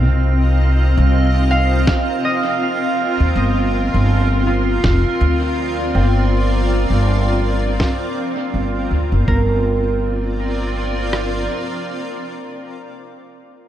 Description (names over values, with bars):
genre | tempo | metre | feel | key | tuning
ambient dub | 81 BPM | 4/4 | swing 57% on 16ths | G minor | A4 = 440 Hz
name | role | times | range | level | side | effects
granular cloud pad | sustained chords | 0.0-13.0 s | C4 to Eb5 | -22 LUFS | left 1 dB | built-in reverb
concert harp | arpeggios | 0.0-13.1 s | C4 to F5 | -26 LUFS | right 1 dB | low-pass filter, dub echo
upright bass | bass | 0.0-11.5 s | F1 to Eb2 | -16 LUFS | equal | none
drifting glass-harmonics texture | texture | 0.0-9.3 s | F5 | -26 LUFS | right 8 dB | chorus, built-in reverb
electronic snare drum | drums | 1.9-8.0 s | none | -24 LUFS | equal | studio reverb, dub echo
lo-fi sampler-style drum kit | drums | 1.9-11.3 s | kick drum, rim click | -20 LUFS | equal | studio reverb
room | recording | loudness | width
light reverb | none | -15 LUFS | side -11 dB against mid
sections
0.0-9.3 A section; 9.3-12.2 B section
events
filter sweep on harp 0.0-9.3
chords
0.0 Cm7; 3.4 Gm7